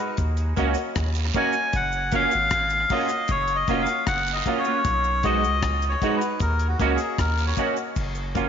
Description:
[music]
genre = roots reggae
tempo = 77 BPM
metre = 4/4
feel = straight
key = F# major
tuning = A4 = 441 Hz
[part]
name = melodica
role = melody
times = 0.0-7.6 s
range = F#4 to G#5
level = -24 LUFS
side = left 2 dB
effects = dub echo
[part]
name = soft dub sub bass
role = bass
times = 0.2-8.5 s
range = E#1 to D#2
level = -26 LUFS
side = equal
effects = none
[part]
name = deep reggae drum kit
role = drums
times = 0.2-8.5 s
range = crash cymbal, hi-hat, kick drum, rim click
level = -30 LUFS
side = left 2 dB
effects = tape echo
[part]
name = cabasa and guiro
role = percussion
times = 0.2-8.5 s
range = none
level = -39 LUFS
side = right 12 dB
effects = none
[part]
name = semi-hollow electric guitar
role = accompaniment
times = 0.6-8.5 s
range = G#3 to F#4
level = -28 LUFS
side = right 9 dB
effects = ensemble chorus, dub echo
[part]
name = dark grand piano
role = stabs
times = 0.6-8.5 s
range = F#4 to E#5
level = -32 LUFS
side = left 8 dB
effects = none
[sound]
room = moderate echo chamber reverb, RT60 2.0 s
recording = 1960s-style stereo with parts hard left and right, nothing above 7.5 kHz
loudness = -21 LUFS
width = side -8 dB against mid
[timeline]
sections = 0.0-8.0 A section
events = melodica solo 0.0-8.0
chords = 0.2 D#m7; 1.7 F#maj7; 4.9 B6; 6.4 D#m7; 8.0 F#maj7

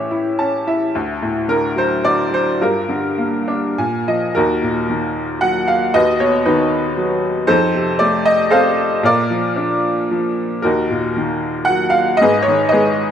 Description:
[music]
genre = classical, lyrical solo piano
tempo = 97-119 BPM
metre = 3/4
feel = rubato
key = G minor, Eb minor from 4.4 s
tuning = A4 = 440 Hz
[part]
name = bright upright piano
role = solo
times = 0.0-13.1 s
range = D2 to A5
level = -14 LUFS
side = equal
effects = none
[sound]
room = moderate scoring stage reverb, RT60 2.0 s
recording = minimal, uncompressed stereo recording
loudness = -14 LUFS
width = side -9 dB against mid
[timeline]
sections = 0.0-4.4 A section; 4.4-13.1 B section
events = upright piano fill 0.1-0.9, 3.5-4.4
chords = 0.0 A7; 0.9 D; 2.6 Gm7; 3.8 Bb5; 4.4 Ebm; 5.9 B/D#; 7.5 F7; 9.0 Bb; 10.6 Ebm; 12.2 Abm

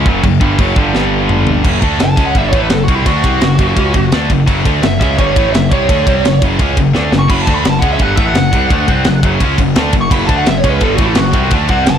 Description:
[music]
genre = heavy metal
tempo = 170 BPM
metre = 4/4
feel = straight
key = F# phrygian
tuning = A4 = 440 Hz
[part]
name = scooped high-gain guitar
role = riff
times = 0.0-12.0 s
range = F#2 to D4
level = -16 LUFS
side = left 9 dB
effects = distortion
[part]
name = tight distorted guitar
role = riff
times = 0.0-12.0 s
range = F#2 to D4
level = -18 LUFS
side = right 13 dB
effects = distortion
[part]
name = fuzz picked electric bass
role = bass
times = 0.0-12.0 s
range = F#1 to D2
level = -17 LUFS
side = equal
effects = overdrive
[part]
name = tight metal drum kit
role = drums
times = 0.1-12.0 s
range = crash cymbal, kick drum, ride cymbal, snare drum, toms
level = -15 LUFS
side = equal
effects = none
[part]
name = smooth overdriven lead guitar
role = melody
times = 2.0-12.0 s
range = E4 to C#6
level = -17 LUFS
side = right 2 dB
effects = tape echo
[sound]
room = light reverb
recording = dark, warm production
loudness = -10 LUFS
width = side -8 dB against mid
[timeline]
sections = 0.0-1.6 A section; 1.6-12.0 B section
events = half time 0.0-1.6; drum fill 0.9-1.6, 7.0-7.3; lead electric guitar solo 1.6-12.0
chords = 0.0 F#5; 0.9 G5; 1.6 F#m

